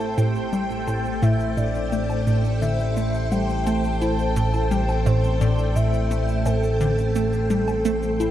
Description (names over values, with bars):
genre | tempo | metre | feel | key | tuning
ambient, sequencer-driven space music | 86 BPM | 4/4 | straight | A minor | A4 = 441 Hz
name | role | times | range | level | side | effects
soft octave-layered synth lead | melody | 0.0-8.3 s | A4 to A5 | -27 LUFS | left 1 dB | chorus, tremolo, tape echo
string machine, full ensemble | sustained chords | 0.0-8.3 s | A3 to G5 | -28 LUFS | right 1 dB | phaser, ensemble chorus
fat analog bass | bass | 0.0-8.3 s | A1 | -24 LUFS | equal | none
shaker and woodblock | percussion | 0.0-8.3 s | none | -40 LUFS | left 3 dB | tape echo
wind-like tuned noise texture | texture | 0.4-8.3 s | G5 | -41 LUFS | right 2 dB | none
hollow square pluck | riff | 0.2-8.3 s | A2 to E4 | -24 LUFS | equal | chorus, tape echo
room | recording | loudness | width
moderate plate reverb, RT60 2.8 s | dark, warm production | -20 LUFS | side -12 dB against mid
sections
0.0-8.3 A section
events
fade-in on drum 0.0-8.3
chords
0.0 Am7